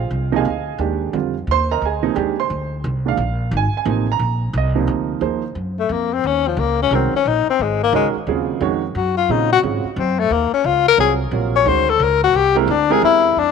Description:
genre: jazz.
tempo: 176 BPM.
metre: 3/4.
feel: swing 64% on 8ths.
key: Eb dorian from 5.2 s.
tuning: A4 = 441 Hz.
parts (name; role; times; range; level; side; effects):
dark baby grand piano; accompaniment; 0.0-13.3 s; Bb2 to C6; -21 LUFS; right 12 dB; none.
upright bass; bass; 0.0-13.5 s; Ab1 to Bb2; -22 LUFS; equal; none.
breathy tenor saxophone; melody; 5.8-13.5 s; F3 to Db5; -16 LUFS; left 10 dB; none.
room: light reverb, small room ambience.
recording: 1960s-style stereo with parts hard left and right.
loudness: -16 LUFS.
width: side -6 dB against mid.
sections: 0.0-5.2 A section; 5.2-13.4 A section.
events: tenor saxophone solo 5.2-13.4.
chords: 0.0 Fm9; 1.1 Absus2; 5.2 Ebm11; 12.4 C7b13.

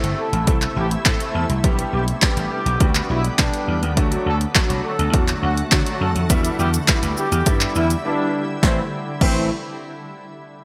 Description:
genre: dance-pop.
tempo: 103 BPM.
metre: 4/4.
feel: straight.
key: A dorian.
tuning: A4 = 439 Hz.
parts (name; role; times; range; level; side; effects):
warm concert grand piano; accompaniment; 0.0-9.5 s; E3 to A4; -29 LUFS; equal; ensemble chorus, sidechain pumping.
shimmering ambient pad; sustained chords; 0.0-8.9 s; C3 to F#4; -31 LUFS; equal; chorus, built-in reverb, sidechain pumping.
vintage slap bass; bass; 0.0-9.5 s; G1 to D3; -24 LUFS; equal; sidechain pumping.
punchy analog drum machine; drums; 0.0-9.3 s; crash cymbal, handclaps, hi-hat, kick drum, shaker, snare drum; -21 LUFS; equal; overdrive.
warm horn section; melody; 0.2-9.5 s; C4 to A4; -29 LUFS; equal; digital delay.
room: moderate lush hall reverb, RT60 1.8 s, digital ambience.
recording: bright 1980s-style digital production.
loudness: -20 LUFS.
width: mono.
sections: 0.0-8.6 A section; 8.6-10.6 B section.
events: silent gap 8.0-8.6.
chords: 0.0 Am; 1.6 G; 4.0 D; 6.3 Em7; 8.6 Am.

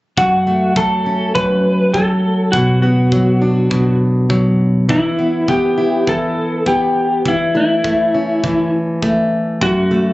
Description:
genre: acoustic pop.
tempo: 102 BPM.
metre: 4/4.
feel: swing 60% on 16ths.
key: unclear.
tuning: A4 = 443 Hz.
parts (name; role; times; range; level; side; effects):
electric slide guitar; melody; 0.2-10.1 s; E4 to B4; -16 LUFS; equal; none.
fingerpicked plugged-in steel-string acoustic guitar; accompaniment; 0.2-10.1 s; F#2 to E4; -15 LUFS; equal; none.
kick drum; drums; 0.2-9.8 s; none; -25 LUFS; equal; none.
room: little or no reverb.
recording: recorded on a phone in the room, club reverb, nothing above 8.0 kHz.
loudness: -13 LUFS.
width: side -18 dB against mid.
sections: 0.2-10.1 A section.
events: none.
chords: 0.2 F#m; 2.5 Bm; 4.9 Em; 7.3 A/E; 9.6 F#m.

